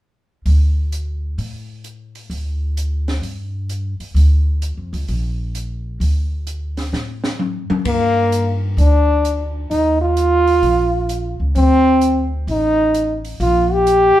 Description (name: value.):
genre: jazz, small-group swing and bop.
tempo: 130 BPM.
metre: 4/4.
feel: swing 67% on 8ths.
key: G minor.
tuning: A4 = 441 Hz.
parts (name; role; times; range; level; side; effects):
upright bass; bass; 0.5-14.2 s; A1 to A2; -18 LUFS; equal; none.
open jazz drum kit; drums; 0.5-14.0 s; hi-hat, kick drum, ride cymbal, snare drum, toms; -27 LUFS; left 1 dB; none.
breathy trombone; melody; 7.9-14.2 s; Bb3 to G4; -14 LUFS; equal; plate reverb.
room: wet studio reverb, RT60 0.7 s.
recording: heard from further back in the room.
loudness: -15 LUFS.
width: side -13 dB against mid.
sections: 0.5-7.9 A section; 7.9-14.2 B section.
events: drum fill 6.9-7.9.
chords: 0.5 D5; 2.3 Gm/D; 6.0 D5; 7.9 Gm; 9.7 Ebsus2; 11.6 D5; 13.4 Gm7/Bb.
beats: | 0.46 0.92 1.38 1.85 | 2.31 2.77 3.23 3.70 | 4.16 4.62 5.08 5.55 | 6.01 6.47 6.93 7.39 | 7.86 8.32 8.78 9.24 | 9.71 10.17 10.63 11.09 | 11.55 12.02 12.48 12.94 | 13.40 13.87.